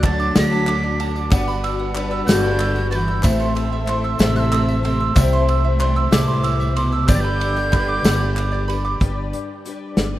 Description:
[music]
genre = indie folk with a building arrangement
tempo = 62 BPM (dotted quarters)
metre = 6/8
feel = straight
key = G major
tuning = A4 = 441 Hz
[part]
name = breathy mellow tin whistle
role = melody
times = 0.0-8.7 s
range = D6 to B6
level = -27 LUFS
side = right 1 dB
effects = none
[part]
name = warm cello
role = second line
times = 0.0-8.7 s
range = A2 to F#3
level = -27 LUFS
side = right 1 dB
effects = none
[part]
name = picked twelve-string acoustic guitar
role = accompaniment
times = 0.0-10.2 s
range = A2 to B4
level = -26 LUFS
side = left 5 dB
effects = ensemble chorus
[part]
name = warm studio string section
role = sustained chords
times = 0.0-9.0 s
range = D3 to E5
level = -30 LUFS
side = right 1 dB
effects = none
[part]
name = mandolin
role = arpeggios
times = 0.0-9.0 s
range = F#4 to E6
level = -25 LUFS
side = right 4 dB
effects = digital delay
[part]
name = upright bass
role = bass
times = 0.0-10.2 s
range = G1 to D2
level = -21 LUFS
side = equal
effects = none
[part]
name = loose indie drum kit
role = drums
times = 0.0-10.1 s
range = hi-hat, kick drum, ride cymbal, snare drum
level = -20 LUFS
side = equal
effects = none
[part]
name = group handclap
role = percussion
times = 0.0-8.9 s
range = none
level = -35 LUFS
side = left 2 dB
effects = none
[part]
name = tambourine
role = percussion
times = 0.2-8.8 s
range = none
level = -37 LUFS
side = left 3 dB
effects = none
[sound]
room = light reverb, studio reverb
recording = rough home demo mix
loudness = -16 LUFS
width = side -14 dB against mid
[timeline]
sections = 0.0-9.0 A section; 9.0-10.2 B section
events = none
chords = 0.0 D; 1.3 Gmaj7; 3.2 Am; 5.2 C6; 7.1 G

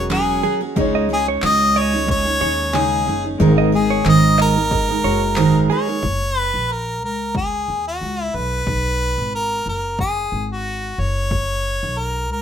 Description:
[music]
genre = acoustic pop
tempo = 91 BPM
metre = 4/4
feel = swing 55% on 16ths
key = F# major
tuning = A4 = 440 Hz
[part]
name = clear harmonica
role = melody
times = 0.0-12.4 s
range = F#4 to D#5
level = -20 LUFS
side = left 1 dB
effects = none
[part]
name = clear baby grand piano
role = accompaniment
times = 0.0-6.1 s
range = G#3 to C#5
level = -26 LUFS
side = left 6 dB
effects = none
[part]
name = picked steel-string acoustic guitar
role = accompaniment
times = 0.0-6.0 s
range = G#2 to A#4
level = -18 LUFS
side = right 4 dB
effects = none
[part]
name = upright bass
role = bass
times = 0.0-12.4 s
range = E1 to D#2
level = -24 LUFS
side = left 1 dB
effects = none
[part]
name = punchy analog drum machine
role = drums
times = 0.1-11.5 s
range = handclaps, kick drum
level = -25 LUFS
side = left 1 dB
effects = overdrive
[part]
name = semi-hollow electric guitar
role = arpeggios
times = 0.4-5.9 s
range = G#4 to D#5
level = -24 LUFS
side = right 8 dB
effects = none
[sound]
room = moderate studio reverb, RT60 1.0 s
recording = minimal, uncompressed stereo recording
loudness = -16 LUFS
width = side -8 dB against mid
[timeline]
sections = 0.0-6.0 A section; 6.0-12.4 B section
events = none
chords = 0.0 F#sus2; 0.8 C#sus2; 3.4 G#sus2; 6.0 F#; 8.3 B5; 11.0 F#5

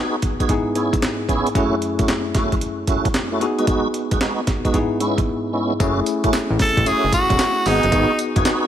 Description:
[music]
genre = R&B, new jack swing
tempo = 113 BPM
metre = 4/4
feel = swing 66% on 16ths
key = F# dorian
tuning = A4 = 440 Hz
[part]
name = bell-like tine electric piano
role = accompaniment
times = 0.0-8.7 s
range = F#2 to G#4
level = -23 LUFS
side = left 2 dB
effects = medium stereo tremolo
[part]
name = tonewheel organ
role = stabs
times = 0.0-8.7 s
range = G#3 to G#4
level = -23 LUFS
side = right 2 dB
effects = overdrive, chorus vibrato, slow rotary speaker
[part]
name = breakbeat sampler-style drum kit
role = drums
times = 0.2-8.6 s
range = handclaps, hi-hat, kick drum, snare drum, tambourine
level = -22 LUFS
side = equal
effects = none
[part]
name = fat analog bass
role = bass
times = 5.8-8.4 s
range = E1 to A1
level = -21 LUFS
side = equal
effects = none
[part]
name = raspy tenor saxophone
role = melody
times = 6.6-8.2 s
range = D#4 to A4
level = -19 LUFS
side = equal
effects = ping-pong delay
[sound]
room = light reverb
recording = none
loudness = -17 LUFS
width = side -10 dB against mid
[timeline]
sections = 0.0-5.8 A section; 5.8-8.7 B section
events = break 5.3-5.8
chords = 0.5 C#m7/G#; 1.6 F#m7; 3.4 G#m7; 4.7 C#m7/G#; 5.8 F#m7; 7.7 G#m7

